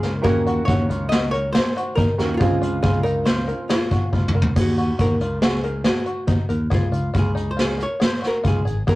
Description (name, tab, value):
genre	progressive instrumental, band music in an uneven meter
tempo	139 BPM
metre	5/4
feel	straight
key	Eb dorian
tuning	A4 = 441 Hz
part	archtop guitar, miked and amplified	melody	0.0-9.0 s	F4 to Eb5	-25 LUFS	equal	none
part	bright grand piano	accompaniment	0.0-4.5 s	Db3 to Gb4	-27 LUFS	right 3 dB	none
part	bluegrass banjo	arpeggios	0.0-9.0 s	Eb4 to Bb4	-30 LUFS	left 2 dB	none
part	picked electric bass	bass	0.0-9.0 s	Ab1 to Eb2	-24 LUFS	equal	none
part	vintage brush drum kit	drums	0.0-9.0 s	crash cymbal, hi-hat, kick drum, snare drum, toms	-21 LUFS	equal	none
room	moderate booth ambience, RT60 0.2 s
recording	rough rehearsal-room recording, tube saturation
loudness	-18 LUFS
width	side -18 dB against mid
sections	0.0-4.6 A section; 4.6-9.0 B section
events	drum fill 4.1-4.6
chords	0.3 Ebm7; 2.4 Dbmaj7; 4.6 Ebm7; 6.7 Db